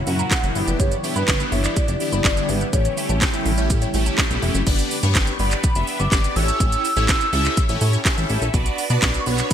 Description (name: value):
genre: dance-pop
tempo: 124 BPM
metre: 4/4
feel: straight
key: unclear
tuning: A4 = 440 Hz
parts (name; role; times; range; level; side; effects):
- warm velvety synth lead; melody; 0.0-9.5 s; B4 to E6; -26 LUFS; equal; chorus, ping-pong delay
- ethereal airy pad; sustained chords; 0.0-4.6 s; A#2 to E4; -30 LUFS; left 2 dB; ensemble chorus, built-in reverb, sidechain pumping
- mallet-like synth pluck; arpeggios; 0.0-4.5 s; G4 to G6; -33 LUFS; equal; chorus, phaser, sidechain pumping, ping-pong delay
- plucky analog bass; bass; 0.0-9.4 s; E#1 to B2; -22 LUFS; equal; sidechain pumping
- big bright polysynth; accompaniment; 0.1-9.5 s; A3 to E5; -25 LUFS; equal; chorus, phaser, sidechain pumping
- house drum kit; drums; 0.1-9.5 s; crash cymbal, handclaps, hi-hat, kick drum, shaker, snare drum; -21 LUFS; equal; gated reverb
room: light reverb, digital ambience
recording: bright 1980s-style digital production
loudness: -17 LUFS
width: side -9 dB against mid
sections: 0.0-4.7 A section; 4.7-9.5 B section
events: none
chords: 0.0 F#7; 0.6 Em7; 2.7 A7; 4.7 G; 6.4 A7; 8.5 Bm